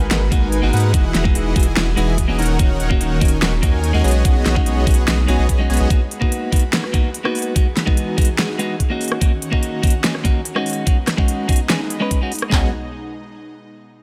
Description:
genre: future bass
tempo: 145 BPM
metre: 4/4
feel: half-time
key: B major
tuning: A4 = 440 Hz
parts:
  - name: airy breathy pad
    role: sustained chords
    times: 0.0-12.7 s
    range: B2 to B4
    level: -32 LUFS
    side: equal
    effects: chorus, sidechain pumping
  - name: big bright polysynth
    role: riff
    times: 0.0-5.9, 12.5-12.7 s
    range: D#3 to G#5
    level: -26 LUFS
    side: equal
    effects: lush chorus, sidechain pumping, tape echo
  - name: saturated sub bass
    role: bass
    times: 0.0-5.9, 12.5-12.7 s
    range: D#1 to G#2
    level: -21 LUFS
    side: equal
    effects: sidechain pumping
  - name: clean electric guitar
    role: accompaniment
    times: 0.1-12.7 s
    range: G#3 to B4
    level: -26 LUFS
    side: equal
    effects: sidechain pumping, tape echo
  - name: pop drum kit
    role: drums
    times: 0.1-12.5 s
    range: hi-hat, rim click, snare drum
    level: -24 LUFS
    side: equal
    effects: studio reverb
  - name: pop drum kit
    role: drums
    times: 0.3-12.6 s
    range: handclaps, kick drum, toms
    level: -19 LUFS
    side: equal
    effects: studio reverb
room: digital ambience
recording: none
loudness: -18 LUFS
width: mono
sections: 0.0-12.5 A section; 12.5-14.0 B section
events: none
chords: 0.0 G#m7; 0.9 Emaj9; 2.4 D#m7; 4.0 B6; 5.9 G#m7; 7.6 Emaj9; 9.0 D#m7; 10.7 B6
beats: 0.11 0.53 | 0.94 1.35 1.77 2.18 | 2.59 3.01 3.42 3.83 | 4.25 4.66 5.08 5.49 | 5.90 6.32 6.73 7.15 | 7.56 7.97 8.39 8.80 | 9.21 9.63 10.04 10.46 | 10.87 11.28 11.70 12.11 | 12.53

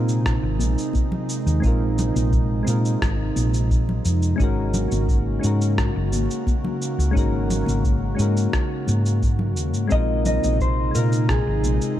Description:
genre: sunset chillout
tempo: 87 BPM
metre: 4/4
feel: straight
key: Bb minor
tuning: A4 = 438 Hz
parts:
  - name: soft electric-piano-like synth keys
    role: accompaniment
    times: 0.0-12.0 s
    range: C3 to Bb4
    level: -28 LUFS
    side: moving between left 5 dB and right 4 dB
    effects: chorus, auto-pan, low-pass filter, ping-pong delay
  - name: airy breathy pad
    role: sustained chords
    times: 0.0-12.0 s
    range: C3 to Gb4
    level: -27 LUFS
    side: right 1 dB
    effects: chorus
  - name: hollow-body short-scale fingered electric bass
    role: bass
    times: 0.0-11.8 s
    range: Gb1 to Bb2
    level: -22 LUFS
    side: equal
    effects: tube saturation
  - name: electronic shaker and rim click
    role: drums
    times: 0.1-12.0 s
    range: none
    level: -32 LUFS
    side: right 1 dB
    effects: none
  - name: electronic kick drum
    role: drums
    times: 0.3-11.4 s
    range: none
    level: -22 LUFS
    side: equal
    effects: none
  - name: congas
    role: percussion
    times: 0.6-11.8 s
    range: none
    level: -30 LUFS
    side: left 2 dB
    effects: none
  - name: mellow electric guitar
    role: melody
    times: 9.9-12.0 s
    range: Ab4 to Eb5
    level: -26 LUFS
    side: left 2 dB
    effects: ping-pong delay
room: light reverb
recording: dark, warm production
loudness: -19 LUFS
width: side -12 dB against mid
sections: 0.0-12.0 A section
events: none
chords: 0.0 Bb9sus4; 4.4 Ab9sus4; 9.9 Bb9sus4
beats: 0.26 0.95 | 1.64 2.33 3.02 3.71 | 4.40 5.09 5.78 6.47 | 7.16 7.85 8.54 9.23 | 9.92 10.61 11.30 11.98

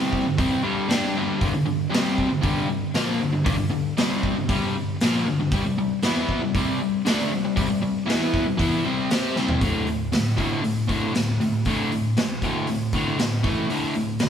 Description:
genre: garage rock duo or trio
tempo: 117 BPM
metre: 4/4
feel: straight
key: unclear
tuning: A4 = 439 Hz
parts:
  - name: overdriven electric guitar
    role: riff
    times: 0.0-14.3 s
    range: D2 to C5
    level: -22 LUFS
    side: equal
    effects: none
  - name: raw garage drum kit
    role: drums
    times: 0.1-14.3 s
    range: hi-hat, kick drum, snare drum, toms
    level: -26 LUFS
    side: equal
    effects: none
room: wet stone room reverb, RT60 1.2 s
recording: band playing live in one room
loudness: -21 LUFS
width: side -8 dB against mid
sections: 0.0-9.6 A section; 9.6-14.3 B section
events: drum fill 9.4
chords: 0.0 G5; 5.5 C5; 9.6 D5; 13.4 A5; 13.7 D5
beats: 0.39 0.90 | 1.42 1.93 2.44 2.95 | 3.47 3.98 4.49 5.00 | 5.52 6.03 6.54 7.05 | 7.56 8.08 8.59 9.10 | 9.61 10.12 10.63 11.15 | 11.66 12.17 12.68 13.19 | 13.70 14.21

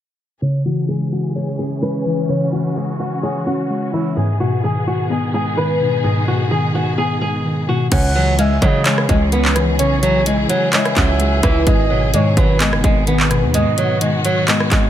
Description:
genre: hip hop, trap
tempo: 128 BPM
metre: 4/4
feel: half-time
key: C# minor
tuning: A4 = 440 Hz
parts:
  - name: flamenco guitar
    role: melody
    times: 0.4-14.9 s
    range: E3 to C#5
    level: -20 LUFS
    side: equal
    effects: low-pass filter
  - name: muted felt-like synth keys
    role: accompaniment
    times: 0.4-14.9 s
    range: G#2 to C#5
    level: -20 LUFS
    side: left 1 dB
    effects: chorus, low-pass filter
  - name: dark symphonic string section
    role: sustained chords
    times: 0.4-14.9 s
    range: D#3 to G#4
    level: -26 LUFS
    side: equal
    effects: low-pass filter
  - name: gliding portamento lead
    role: second line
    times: 7.9-14.0 s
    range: B4 to F#5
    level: -24 LUFS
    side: right 4 dB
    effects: chorus, ping-pong delay
  - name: distorted 808-style bass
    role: bass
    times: 7.9-14.9 s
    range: F#1 to C#3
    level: -19 LUFS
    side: equal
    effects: distortion
  - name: trap drum kit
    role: drums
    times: 7.9-14.8 s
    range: crash cymbal, handclaps, hi-hat, kick drum, rim click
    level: -18 LUFS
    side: equal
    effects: none
room: light reverb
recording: none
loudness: -14 LUFS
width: side -11 dB against mid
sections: 0.4-7.9 A section; 7.9-14.9 B section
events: filter sweep 0.4-7.9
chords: 0.4 C#m; 4.2 G#m; 7.9 C#m; 11.7 G#m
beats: | 0.42 0.89 1.35 1.82 | 2.29 2.76 3.23 3.70 | 4.17 4.64 5.11 5.57 | 6.04 6.51 6.98 7.45 | 7.92 8.39 8.86 9.32 | 9.79 10.26 10.73 11.20 | 11.67 12.14 12.61 13.07 | 13.54 14.01 14.48

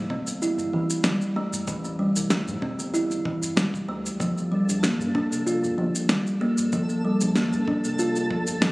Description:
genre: organic downtempo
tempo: 95 BPM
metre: 4/4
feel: swing 54% on 16ths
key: G dorian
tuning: A4 = 440 Hz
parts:
  - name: round analog bass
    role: bass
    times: 0.0-8.7 s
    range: D1 to A2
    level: -34 LUFS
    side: equal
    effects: tube saturation
  - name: kalimba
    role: arpeggios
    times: 0.1-8.7 s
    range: E3 to F4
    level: -24 LUFS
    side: equal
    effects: low-pass filter, ping-pong delay
  - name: electronic kick drum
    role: drums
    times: 0.1-8.4 s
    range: none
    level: -35 LUFS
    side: equal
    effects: none
  - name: electronic shaker and snare drum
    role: drums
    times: 0.3-8.7 s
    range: none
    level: -26 LUFS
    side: equal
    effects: none
  - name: udu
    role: percussion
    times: 0.6-8.6 s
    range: none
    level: -47 LUFS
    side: equal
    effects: none
  - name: twinkling granular texture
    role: texture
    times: 4.5-8.7 s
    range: A4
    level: -35 LUFS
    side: right 1 dB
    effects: built-in reverb
room: moderate lush hall reverb, RT60 2.7 s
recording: recorded on a phone in the room, club reverb, compression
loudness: -22 LUFS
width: side -22 dB against mid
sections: 0.0-8.7 A section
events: filter sweep on kalimba 0.0-8.7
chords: 0.0 Am7; 4.2 Gm7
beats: 0.42 1.05 | 1.68 2.31 2.94 3.57 | 4.21 4.84 5.47 6.10 | 6.73 7.36 8.00 8.63

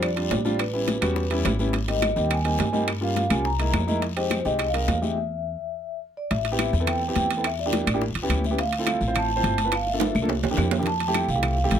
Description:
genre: Afro-Cuban jazz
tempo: 210 BPM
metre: 4/4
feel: straight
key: A minor from 6.3 s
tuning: A4 = 440 Hz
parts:
  - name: vibraphone with soft mallets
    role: melody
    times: 0.0-11.8 s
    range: B4 to Bb5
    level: -27 LUFS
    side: equal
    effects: none
  - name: warm concert grand piano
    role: accompaniment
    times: 0.0-11.8 s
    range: G3 to C5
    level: -28 LUFS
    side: equal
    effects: none
  - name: upright bass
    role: bass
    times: 0.0-11.8 s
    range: G1 to G2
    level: -27 LUFS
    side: equal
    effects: none
  - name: bongos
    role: percussion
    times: 0.0-11.8 s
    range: none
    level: -34 LUFS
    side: left 9 dB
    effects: none
  - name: claves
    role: percussion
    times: 0.0-11.6 s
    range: none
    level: -35 LUFS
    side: left 1 dB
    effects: none
  - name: congas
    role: percussion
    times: 0.0-11.8 s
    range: none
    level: -32 LUFS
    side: left 1 dB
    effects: none
  - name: guiro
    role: percussion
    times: 0.0-11.8 s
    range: none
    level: -37 LUFS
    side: left 8 dB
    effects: none
  - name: timbales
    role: percussion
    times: 0.0-11.8 s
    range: none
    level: -30 LUFS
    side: right 9 dB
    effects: none
room: light reverb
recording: close, detailed microphones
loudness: -22 LUFS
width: side -9 dB against mid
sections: 0.0-6.3 A section; 6.3-11.8 B section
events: stop 5.2-6.3; drum fill 10.0-10.9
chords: 0.0 Bb6 (rootless); 0.6 A9; 1.7 Abmaj9; 2.9 Gm7b5; 3.5 C7alt; 4.0 Fm7; 5.2 N.C.; 6.3 Am7; 7.4 Em7b5; 8.0 A7; 8.6 Dm9; 9.7 Gm7; 10.3 C7; 10.9 Fmaj7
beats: 0.02 0.31 | 0.59 0.88 1.17 1.45 | 1.74 2.02 2.31 2.59 | 2.88 3.17 3.45 3.74 | 4.02 4.31 4.59 4.88 | 5.17 5.45 5.74 6.02 | 6.31 6.59 6.88 7.16 | 7.45 7.73 8.02 8.30 | 8.59 8.87 9.15 9.44 | 9.72 10.01 10.29 10.58 | 10.86 11.14 11.43 11.71

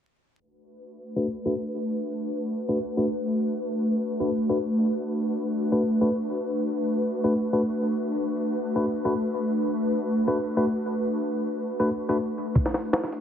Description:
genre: drum and bass, jungle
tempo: free time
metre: none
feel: none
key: B minor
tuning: A4 = 443 Hz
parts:
  - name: tine electric piano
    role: stabs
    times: 1.2-12.2 s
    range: A3 to B4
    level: -27 LUFS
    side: left 2 dB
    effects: low-pass filter, dub echo
  - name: jungle sampler-style drum kit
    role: drums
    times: 12.6-13.2 s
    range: hi-hat, kick drum, snare drum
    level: -23 LUFS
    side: equal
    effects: studio reverb
room: wet digital room reverb, RT60 0.9 s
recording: vinyl crackle, low-pass filter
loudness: -24 LUFS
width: side -9 dB against mid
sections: 0.4-13.2 A section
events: filter sweep on tine electric piano 0.4-13.2; filter sweep 0.4-13.2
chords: 0.4 Bm7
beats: free time

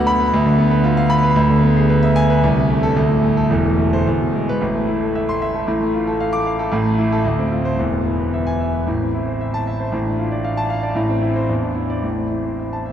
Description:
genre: classical, virtuoso piano study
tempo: 113 BPM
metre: 2/4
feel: rubato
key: A minor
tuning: A4 = 440 Hz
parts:
  - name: clear concert grand piano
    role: solo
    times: 0.0-12.9 s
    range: E1 to D6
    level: -16 LUFS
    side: equal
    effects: none
room: wet cathedral reverb, RT60 4.4 s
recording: dark, warm production, nothing above 10.8 kHz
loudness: -16 LUFS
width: side -9 dB against mid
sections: 0.0-4.6 A section; 4.6-12.9 B section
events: none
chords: 0.3 Bdim/D; 1.4 E7/D; 2.4 Am/C; 3.0 D5; 3.5 Am/E; 4.1 E; 4.6 Am; 5.7 Dm/A; 6.7 A5; 7.2 Dm7; 7.8 E; 8.9 Am; 9.9 Dm/A; 11.0 Am; 11.5 Dsus2/E; 12.0 Am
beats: | 0.32 0.84 | 1.36 1.89 | 2.42 2.96 | 3.50 4.06 | 4.61 5.14 | 5.67 6.19 | 6.72 7.24 | 7.78 8.33 | 8.87 9.41 | 9.93 10.45 | 10.97 11.49 | 12.04 12.59

